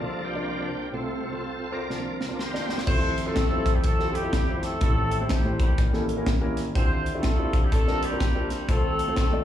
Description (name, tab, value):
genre	uptempo gospel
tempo	124 BPM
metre	4/4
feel	swing 62% on 8ths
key	F major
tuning	A4 = 440 Hz
part	dark concert grand piano	accompaniment	0.0-9.4 s	F1 to D5	-28 LUFS	left 1 dB	plate reverb, slapback echo
part	bright tonewheel organ	sustained chords	0.0-2.8 s	C3 to D5	-31 LUFS	right 2 dB	fast rotary speaker, overdrive, chorus vibrato, plate reverb
part	crisp fusion drum kit	drums	1.9-9.3 s	crash cymbal, hi-hat, kick drum, snare drum	-24 LUFS	equal	none
part	dark horn section	melody	2.9-9.4 s	G3 to C5	-28 LUFS	equal	plate reverb, slapback echo
room	light reverb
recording	live gig heard through the venue's PA, club reverb, studio ambience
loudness	-23 LUFS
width	side -11 dB against mid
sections	0.0-2.9 A section; 2.9-9.4 B section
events	tonewheel organ solo 0.0-2.9; drum fill 1.9-2.9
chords	0.0 C9sus4; 0.9 F/C; 1.9 C9sus4; 2.9 Fmaj9; 4.8 Am7; 5.8 A7b9; 6.8 Dm11; 7.7 C9sus4; 8.7 F/C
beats	0.45 | 0.93 1.42 1.91 2.39 | 2.88 3.36 3.85 4.33 | 4.82 5.30 5.79 6.27 | 6.75 7.24 7.72 8.20 | 8.68 9.17